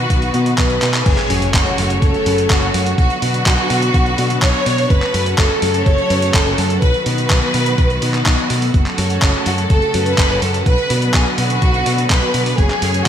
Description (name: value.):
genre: italo disco.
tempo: 125 BPM.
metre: 4/4.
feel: straight.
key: F# minor.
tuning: A4 = 440 Hz.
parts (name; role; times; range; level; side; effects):
warm symphonic violin section; melody; 0.0-13.1 s; F#4 to C#5; -19 LUFS; equal; digital delay.
clear symphonic string section; sustained chords; 0.0-13.1 s; C#3 to C#5; -23 LUFS; equal; none.
chorused polysynth; stabs; 0.0-13.1 s; B3 to F#5; -25 LUFS; left 2 dB; none.
fingered electric bass; bass; 0.0-13.0 s; F#1 to B2; -20 LUFS; equal; none.
dusty soul sampler-style drum kit; drums; 0.1-13.1 s; crash cymbal, handclaps, hi-hat; -21 LUFS; equal; gated reverb.
electronic kick drum; drums; 0.1-12.7 s; none; -15 LUFS; equal; none.
impact; sound effects; 1.1-3.0 s; none; -27 LUFS; equal; none.
room: moderate lush hall reverb, RT60 1.9 s.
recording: bright 1980s-style digital production.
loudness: -13 LUFS.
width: side -9 dB against mid.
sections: 0.0-1.1 A section; 1.1-13.1 B section.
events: filter sweep on analog polysynth 0.0-1.1; drum fill 0.8; impact 1.1-3.0.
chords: 0.0 B; 1.1 F#m; 3.0 Bm; 4.9 F#m; 6.8 B; 8.7 F#m; 10.7 Bm; 12.6 F#m.